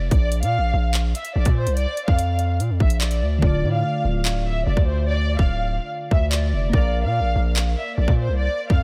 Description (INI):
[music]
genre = hip hop, drill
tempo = 145 BPM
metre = 4/4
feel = half-time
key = unclear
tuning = A4 = 440 Hz
[part]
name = dark studio violin section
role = melody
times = 0.0-8.8 s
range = C5 to F5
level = -29 LUFS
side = equal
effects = delay
[part]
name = distorted 808-style bass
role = bass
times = 0.0-8.8 s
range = D1 to Bb2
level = -23 LUFS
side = equal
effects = distortion
[part]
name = drill drum kit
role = drums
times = 0.1-8.8 s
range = handclaps, hi-hat, kick drum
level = -23 LUFS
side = equal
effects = none
[part]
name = glassy digital keys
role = accompaniment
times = 3.4-8.8 s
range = D3 to F5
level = -31 LUFS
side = equal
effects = chorus
[sound]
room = light reverb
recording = none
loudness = -21 LUFS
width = mono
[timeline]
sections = 0.0-8.8 A section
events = hi-hats muted 3.4-8.8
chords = 0.1 Bb; 3.4 Dm; 6.7 Bb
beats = | 0.11 0.53 0.94 1.35 | 1.77 2.18 2.60 3.01 | 3.42 3.84 4.25 4.67 | 5.08 5.49 5.91 6.32 | 6.73 7.15 7.56 7.98 | 8.39 8.80